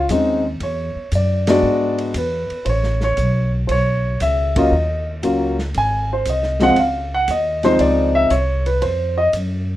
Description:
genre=jazz piano trio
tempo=117 BPM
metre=4/4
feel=swing 69% on 8ths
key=Db major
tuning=A4 = 441 Hz
part: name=dark concert grand piano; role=melody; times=0.0-9.3 s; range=F3 to Ab5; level=-17 LUFS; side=equal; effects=none
part: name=upright bass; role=bass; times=0.0-9.8 s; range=Ab1 to G#2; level=-21 LUFS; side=equal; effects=none
part: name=vintage drum kit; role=drums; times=0.1-9.5 s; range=hi-hat, kick drum, ride cymbal, snare drum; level=-30 LUFS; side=equal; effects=none
room=moderate small room reverb, RT60 0.5 s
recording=rough home demo mix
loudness=-16 LUFS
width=side -14 dB against mid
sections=0.0-9.8 A section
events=band accent 1.4, 4.5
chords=0.0 Bbm9 (rootless); 0.6 E7; 2.7 Aadd9; 4.7 Ebm7; 5.7 Ab6; 6.8 Dbmaj9

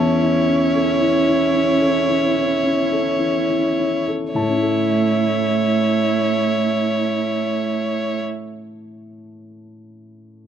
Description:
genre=neoclassical piano and strings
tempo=51-57 BPM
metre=4/4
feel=rubato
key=A major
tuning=A4 = 440 Hz
part: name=rich violin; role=melody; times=0.0-8.2 s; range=C#5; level=-22 LUFS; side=left 4 dB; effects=slapback echo
part: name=rich cello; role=second line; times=0.0-8.2 s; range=A3 to C#4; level=-22 LUFS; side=right 8 dB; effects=none
part: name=dark upright piano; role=accompaniment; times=0.0-10.5 s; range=E2 to A5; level=-22 LUFS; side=left 4 dB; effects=none
part: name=rich viola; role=accompaniment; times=0.0-8.2 s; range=E4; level=-24 LUFS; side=right 4 dB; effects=none
room=small room ambience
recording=dry, close 1970s-style studio recording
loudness=-16 LUFS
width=side -9 dB against mid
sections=0.0-4.3 A section; 4.3-8.8 B section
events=slowing down 0.0-4.3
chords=0.0 A/E; 4.3 A

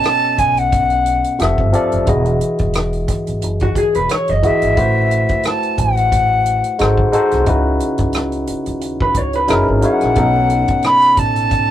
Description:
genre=R&B, neo-soul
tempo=89 BPM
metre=4/4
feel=swing 55% on 16ths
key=E major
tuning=A4 = 440 Hz
part: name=breathy silver concert flute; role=melody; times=0.0-11.7 s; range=E5 to B5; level=-15 LUFS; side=left 1 dB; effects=none
part: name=barky tine electric piano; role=accompaniment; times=0.0-11.7 s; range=B2 to E5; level=-18 LUFS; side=left 1 dB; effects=overdrive
part: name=warm soul drum kit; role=drums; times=0.0-11.7 s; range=hi-hat, kick drum, rim click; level=-21 LUFS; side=equal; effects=none
part: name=upright bass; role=bass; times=0.4-11.7 s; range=E1 to D#2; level=-20 LUFS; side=right 1 dB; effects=none
part: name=electric guitar through a small old amp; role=second line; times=3.6-4.8, 9.0-9.7 s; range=F#4 to D#5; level=-17 LUFS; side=equal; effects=none
room=moderate booth ambience, RT60 0.2 s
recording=rough rehearsal-room recording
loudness=-13 LUFS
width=side -11 dB against mid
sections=0.0-11.7 A section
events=none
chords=0.0 B9; 1.4 Fmaj9; 2.1 Emaj9; 4.8 Am6; 6.8 G#7b9; 7.5 C#m11; 9.5 F#13; 10.2 B9

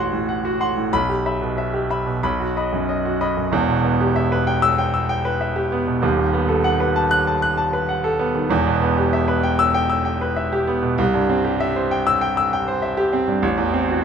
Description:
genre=classical, virtuoso piano study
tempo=97 BPM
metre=4/4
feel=rubato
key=E minor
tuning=A4 = 439 Hz
part: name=clear grand piano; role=solo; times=0.0-14.0 s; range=D#1 to F#6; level=-18 LUFS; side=equal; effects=none
room=moderate studio reverb, RT60 0.9 s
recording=minimal, uncompressed stereo recording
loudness=-18 LUFS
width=side -7 dB against mid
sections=0.0-3.5 A section; 3.5-14.0 B section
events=none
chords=0.0 F#dim/A; 0.9 Em/B; 2.2 B; 3.5 Em; 6.0 B7/D#; 8.5 Em; 11.0 C; 13.4 F#m7b5/A

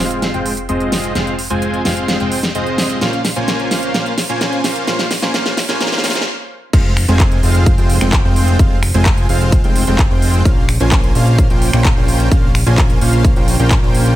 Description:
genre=EDM, festival progressive house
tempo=129 BPM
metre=4/4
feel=straight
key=F minor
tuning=A4 = 441 Hz
part: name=dense compressed supersaw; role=riff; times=0.0-14.1 s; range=Ab3 to Ab5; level=-18 LUFS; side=right 1 dB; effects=sidechain pumping, low-pass filter, tape echo
part: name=fat analog bass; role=bass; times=0.0-14.2 s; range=F1 to Bb1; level=-17 LUFS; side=equal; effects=sidechain pumping
part: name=big-room dance drum kit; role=drums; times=0.1-14.2 s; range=crash cymbal, finger snaps, handclaps, hi-hat, snare drum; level=-20 LUFS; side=equal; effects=none
part: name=electronic kick drum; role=drums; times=6.7-13.8 s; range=none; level=-13 LUFS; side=equal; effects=none
room=light reverb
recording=high-pass filter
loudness=-12 LUFS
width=side -14 dB against mid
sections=0.0-6.7 A section; 6.7-14.2 B section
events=build-up 0.0-6.7; drum fill 0.0-6.3; filter sweep on supersaw synth 0.0-6.7; filter sweep 0.0-6.7; stop 6.3-6.7; drop 6.7-14.2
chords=0.0 Fm; 3.0 Bbmadd9; 6.7 Fm; 10.5 Bbmadd9

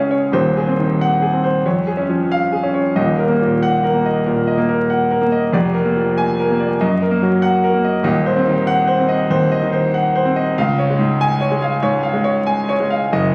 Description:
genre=classical, romantic character piece for solo piano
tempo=94 BPM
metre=4/4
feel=uneven beats, rubato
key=Db major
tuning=A4 = 442 Hz
part: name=clear concert grand piano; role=solo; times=0.0-13.3 s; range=Eb1 to Ab5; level=-17 LUFS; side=equal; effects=none
room=moderate recital hall reverb, RT60 1.5 s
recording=recorded on a phone in the room, club reverb, vinyl crackle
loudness=-17 LUFS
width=mono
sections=0.0-13.3 A section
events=none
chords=0.3 Ab7/Eb; 1.7 Db/F; 3.0 Ebm; 5.5 Bb7/F; 6.8 Ebm/Gb; 8.0 Cdim/Eb; 10.6 Db

